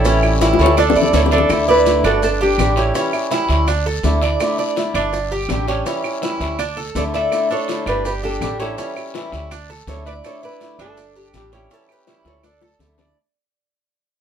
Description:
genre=latin, Cuban son and guajira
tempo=164 BPM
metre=4/4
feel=straight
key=unclear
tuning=A4 = 440 Hz
part: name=nylon-string guitar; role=melody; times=0.0-3.1, 7.0-12.8 s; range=G4 to E5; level=-20 LUFS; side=equal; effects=none
part: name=clear trumpet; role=second line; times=0.0-3.1, 7.0-12.8 s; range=D4 to B4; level=-26 LUFS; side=right 4 dB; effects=none
part: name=picked swing-style acoustic guitar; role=accompaniment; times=0.0-13.2 s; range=D3 to G4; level=-22 LUFS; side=left 2 dB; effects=none
part: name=Cuban tres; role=arpeggios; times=0.0-13.2 s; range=C#4 to D5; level=-22 LUFS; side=right 4 dB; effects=none
part: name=upright bass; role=bass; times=0.0-13.1 s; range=G1 to D2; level=-21 LUFS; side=right 1 dB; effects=none
part: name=maracas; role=percussion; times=0.0-13.2 s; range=none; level=-35 LUFS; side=right 4 dB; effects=none
part: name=bongos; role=percussion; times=0.1-13.1 s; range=none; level=-23 LUFS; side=left 5 dB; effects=none
part: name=guiro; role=percussion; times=0.1-13.2 s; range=none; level=-33 LUFS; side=left 5 dB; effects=none
part: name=claves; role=percussion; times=0.2-12.6 s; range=none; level=-30 LUFS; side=right 8 dB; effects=none
room=light reverb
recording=none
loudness=-15 LUFS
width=side -8 dB against mid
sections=0.0-1.5 A section; 1.5-13.2 B section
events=drum fill 0.4-1.5, 12.3-13.2; fade-out 1.5-13.2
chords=0.1 A7; 0.8 Dsus2; 2.2 Gsus2; 3.0 C#dim; 3.7 Dsus2; 5.1 Gsus2; 5.9 C#dim; 6.6 Dsus2; 8.1 Gsus2; 8.8 A7; 9.5 Dsus2; 11.0 Gsus2; 11.7 A9; 12.4 Dsus2

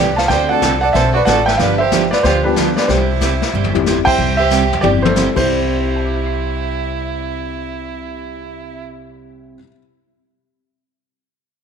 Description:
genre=country, western swing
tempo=185 BPM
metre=4/4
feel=swing 64% on 8ths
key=C major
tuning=A4 = 440 Hz
part: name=felt-muted upright piano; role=melody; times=0.0-9.5 s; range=G4 to A5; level=-17 LUFS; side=right 2 dB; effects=none
part: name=clear fiddle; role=second line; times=0.0-8.8 s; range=D4 to C5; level=-22 LUFS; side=right 8 dB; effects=none
part: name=picked steel-string acoustic guitar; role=accompaniment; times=0.0-9.6 s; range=C3 to A4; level=-23 LUFS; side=right 9 dB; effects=none
part: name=upright bass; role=bass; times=0.0-9.5 s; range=G1 to D2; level=-21 LUFS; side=left 2 dB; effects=none
part: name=vintage brush drum kit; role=drums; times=0.2-5.4 s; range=brushed snare drum, crash cymbal, hi-hat, kick drum, snare drum, toms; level=-21 LUFS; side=left 8 dB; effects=none
part: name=dark upright piano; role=accompaniment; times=0.5-9.8 s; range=C2 to C7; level=-24 LUFS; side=left 13 dB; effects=none
room=moderate echo chamber reverb, RT60 1.9 s, studio reverb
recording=1960s-style stereo with parts hard left and right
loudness=-13 LUFS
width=side -7 dB against mid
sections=0.0-4.2 A section; 4.2-5.5 B section; 5.5-8.1 C section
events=drum fill 3.5-3.9, 4.5-5.2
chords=0.3 D7; 1.6 G7; 2.9 C

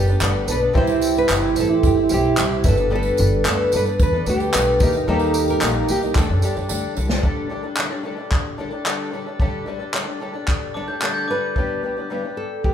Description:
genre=acoustic pop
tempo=111 BPM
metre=4/4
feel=straight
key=unclear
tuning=A4 = 439 Hz
part: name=nylon-string guitar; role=melody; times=0.0-6.9, 10.8-12.7 s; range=D4 to C5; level=-24 LUFS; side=right 2 dB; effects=none
part: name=fingerpicked twelve-string acoustic guitar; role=accompaniment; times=0.0-12.7 s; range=G2 to A4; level=-22 LUFS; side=equal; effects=none
part: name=upright bass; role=bass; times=0.0-7.2 s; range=F#1 to G2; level=-22 LUFS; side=equal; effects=none
part: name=tambourine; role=percussion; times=0.1-7.1 s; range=none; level=-36 LUFS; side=right 7 dB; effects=none
part: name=unplugged drum kit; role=drums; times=0.2-12.7 s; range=handclaps, kick drum, snare drum, tambourine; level=-22 LUFS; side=equal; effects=none
part: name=glockenspiel with hard plastic mallets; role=second line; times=10.7-11.7 s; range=D6 to A6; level=-27 LUFS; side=left 1 dB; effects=none
room=moderate large studio reverb, RT60 1.2 s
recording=band playing live in one room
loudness=-18 LUFS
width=side -9 dB against mid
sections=0.0-7.2 A section; 7.2-11.6 B section; 11.6-12.7 C section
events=drum fill 6.7-7.2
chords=0.0 Gadd9; 0.8 C; 2.6 Gadd9; 4.8 Eb; 6.2 Dsus4; 11.6 G

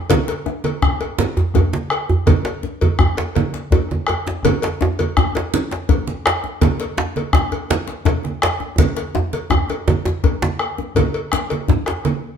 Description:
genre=west african traditional, West African drum ensemble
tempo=110 BPM (dotted quarters)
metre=12/8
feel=straight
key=none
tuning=none
part: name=bombo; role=percussion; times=0.1-12.1 s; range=none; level=-21 LUFS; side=left 2 dB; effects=none
part: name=congas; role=percussion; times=0.1-12.2 s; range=none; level=-21 LUFS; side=right 5 dB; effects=none
part: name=cowbell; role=percussion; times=0.1-12.2 s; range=none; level=-25 LUFS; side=left 3 dB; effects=none
part: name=djembe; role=percussion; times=0.1-12.1 s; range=none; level=-21 LUFS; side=left 4 dB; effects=none
part: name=djembe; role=percussion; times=0.1-12.0 s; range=none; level=-20 LUFS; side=right 2 dB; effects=none
room=moderate large studio reverb, RT60 0.9 s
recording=band playing live in one room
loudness=-16 LUFS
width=side -8 dB against mid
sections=0.0-11.0 A section; 11.0-12.4 B section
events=drum fill 8.8-11.0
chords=none

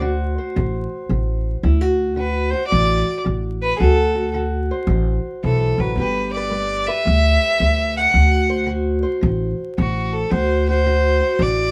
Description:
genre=acoustic country blues, solo or duo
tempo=111 BPM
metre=4/4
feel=swing 64% on 8ths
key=D mixolydian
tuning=A4 = 441 Hz
part: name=fingerpicked steel-string acoustic guitar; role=accompaniment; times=0.0-11.7 s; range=D3 to C5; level=-27 LUFS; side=equal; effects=none
part: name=upright bass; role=bass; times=0.0-11.7 s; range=G1 to D2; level=-22 LUFS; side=equal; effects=none
part: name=rich fiddle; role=melody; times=2.2-11.7 s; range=F#4 to F#5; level=-22 LUFS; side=equal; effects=none
room=light reverb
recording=band playing live in one room, vinyl crackle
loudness=-19 LUFS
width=mono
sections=0.0-11.7 A section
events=none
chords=0.0 D7; 6.0 G; 8.2 D7

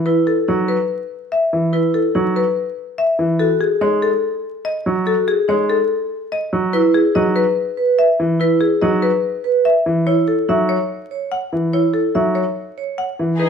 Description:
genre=classical, minimalist pattern music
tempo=144 BPM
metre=4/4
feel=straight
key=F# dorian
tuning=A4 = 440 Hz
part: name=bright grand piano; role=accompaniment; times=0.0-13.5 s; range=E3 to G#3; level=-19 LUFS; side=right 2 dB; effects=none
part: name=marimba with medium hard mallets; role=melody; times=0.1-13.5 s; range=G#4 to F#5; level=-19 LUFS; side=left 5 dB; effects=none
part: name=vibraphone with medium hard mallets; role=arpeggios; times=0.1-13.0 s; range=D#4 to C#5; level=-20 LUFS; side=right 6 dB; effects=none
part: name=clear soprano saxophone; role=second line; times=13.4-13.5 s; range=G#4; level=-33 LUFS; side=right 1 dB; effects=none
part: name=clear studio string section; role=sustained chords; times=13.4-13.5 s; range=D#4 to G#4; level=-22 LUFS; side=left 1 dB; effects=none
room=moderate large studio reverb, RT60 1.1 s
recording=vinyl crackle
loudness=-15 LUFS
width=side -7 dB against mid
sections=0.0-13.4 A section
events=none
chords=0.1 Asus2 (rootless); 3.4 F#m69; 6.7 Emaj7sus2; 10.1 F#7(no3)

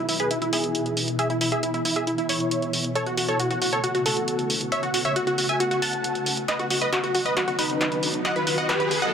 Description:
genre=uplifting trance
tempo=136 BPM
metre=4/4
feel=straight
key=E major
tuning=A4 = 438 Hz
part: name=supersaw stab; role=melody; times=0.0-9.1 s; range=D#4 to A5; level=-24 LUFS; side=equal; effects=low-pass filter, tape echo
part: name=wide unison pluck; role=second line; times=0.0-9.1 s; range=E4 to A5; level=-33 LUFS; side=equal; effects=none
part: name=shimmering ambient pad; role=sustained chords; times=0.0-9.1 s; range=B2 to F#4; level=-30 LUFS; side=left 1 dB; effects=chorus, built-in reverb
part: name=solid FM bass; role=bass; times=0.0-9.1 s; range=E1 to B1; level=-43 LUFS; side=left 1 dB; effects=none
part: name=punchy analog drum machine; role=drums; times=0.1-9.1 s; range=hi-hat, snare drum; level=-27 LUFS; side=equal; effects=high-pass filter on hats, high-pass filter on snare
part: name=riser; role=sound effects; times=7.4-9.1 s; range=none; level=-30 LUFS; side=right 1 dB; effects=none
room=light reverb, digital ambience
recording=none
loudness=-22 LUFS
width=side -7 dB against mid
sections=0.0-9.1 A section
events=build-up 0.0-9.1; filter sweep on supersaw synth 0.0-9.1; drum fill 6.5-9.1; riser 7.4-9.1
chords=0.0 E; 3.0 F#m; 6.5 B

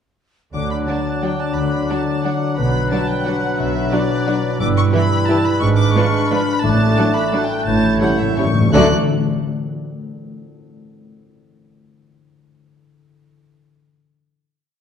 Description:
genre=classical, orchestral ballroom waltz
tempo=175 BPM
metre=3/4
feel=uneven beats, rubato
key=D major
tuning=A4 = 440 Hz
part: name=rich chamber violin section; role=melody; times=0.5-8.9 s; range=D5 to F#6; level=-25 LUFS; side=left 3 dB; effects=none
part: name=large flute ensemble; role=second line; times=0.5-8.9 s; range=D6 to G6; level=-29 LUFS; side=right 1 dB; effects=none
part: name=mellow clarinet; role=second line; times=0.5-8.9 s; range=D4 to E4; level=-26 LUFS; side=equal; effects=none
part: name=warm cor anglais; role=second line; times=0.5-8.9 s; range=B4 to D5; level=-27 LUFS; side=right 2 dB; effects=none
part: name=mellow bassoon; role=accompaniment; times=0.5-8.9 s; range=F#3 to A3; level=-26 LUFS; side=right 3 dB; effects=none
part: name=concert harp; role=arpeggios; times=0.5-9.8 s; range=G2 to A5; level=-23 LUFS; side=left 8 dB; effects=none
part: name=rich studio cello section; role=bass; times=0.5-8.9 s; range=G2 to D3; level=-22 LUFS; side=right 4 dB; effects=none
part: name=rich symphonic double bass section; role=bass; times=0.5-8.9 s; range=G1 to D2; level=-25 LUFS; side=right 5 dB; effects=none
part: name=rich studio violin section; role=second line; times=0.9-8.9 s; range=E#4 to D5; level=-28 LUFS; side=left 3 dB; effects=none
part: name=rich chamber viola section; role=accompaniment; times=0.9-8.9 s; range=E3 to F#4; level=-25 LUFS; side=right 2 dB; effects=none
part: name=warm French horn section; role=sustained chords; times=0.9-8.9 s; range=E3 to E4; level=-27 LUFS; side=left 3 dB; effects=none
part: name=timpani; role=percussion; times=6.6-8.9 s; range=A2 to D3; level=-22 LUFS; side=left 2 dB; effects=none
room=wet scoring stage reverb, RT60 1.5 s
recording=dark, warm production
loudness=-15 LUFS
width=side -8 dB against mid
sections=0.5-8.7 A section; 8.7-9.8 final chord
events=timpani fill 7.7-8.7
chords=0.5 D; 2.6 Bm; 4.6 Em/G; 5.6 G#dim7; 6.6 D/A; 7.7 A7; 8.7 D

